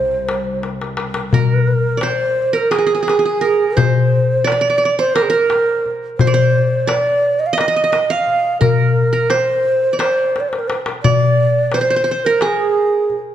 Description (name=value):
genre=Turkish makam ensemble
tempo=173 BPM (eighths)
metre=7/8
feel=straight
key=C makam ussak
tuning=A4 = 440 Hz
part: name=breathy mellow ney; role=melody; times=0.0-13.2 s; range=Ab4 to F5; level=-16 LUFS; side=right 2 dB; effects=none
part: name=warm studio cello section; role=drone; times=0.0-1.4 s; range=C2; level=-29 LUFS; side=left 3 dB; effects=none
part: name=darbuka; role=percussion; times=0.3-13.2 s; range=none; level=-18 LUFS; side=left 4 dB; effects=none
part: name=qanun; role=second line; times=1.3-13.3 s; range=Ab4 to F5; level=-20 LUFS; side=right 3 dB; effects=none
room=moderate recital hall reverb, RT60 1.7 s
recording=dark, warm production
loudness=-13 LUFS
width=side -10 dB against mid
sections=0.0-1.3 A section; 1.3-13.3 B section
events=drum fill 0.6-1.3, 10.3-11.0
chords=none